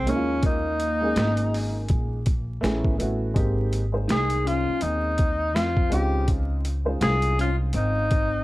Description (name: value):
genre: hip hop, jazz-hop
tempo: 82 BPM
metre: 4/4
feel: swing 60% on 16ths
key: Ab major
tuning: A4 = 439 Hz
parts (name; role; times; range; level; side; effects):
- breathy tenor saxophone; melody; 0.0-8.4 s; C4 to Ab4; -25 LUFS; left 1 dB; none
- mellow electric guitar; second line; 0.0-8.4 s; Bb3 to F4; -33 LUFS; equal; analog chorus, tape echo
- upright bass; bass; 0.0-8.4 s; Ab1 to F2; -26 LUFS; equal; none
- dark upright piano; accompaniment; 0.1-8.0 s; Ab3 to C5; -30 LUFS; equal; none
- boom bap sampler-style drum kit; drums; 0.1-8.3 s; hi-hat, kick drum, snare drum; -25 LUFS; equal; none
room: small room ambience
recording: dry, gritty hardware recording, vinyl crackle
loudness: -21 LUFS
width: side -18 dB against mid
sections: 0.0-8.4 A section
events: none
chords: 0.1 Eb9sus4; 2.6 Amaj9; 3.4 Abmaj9; 5.9 Dbmaj9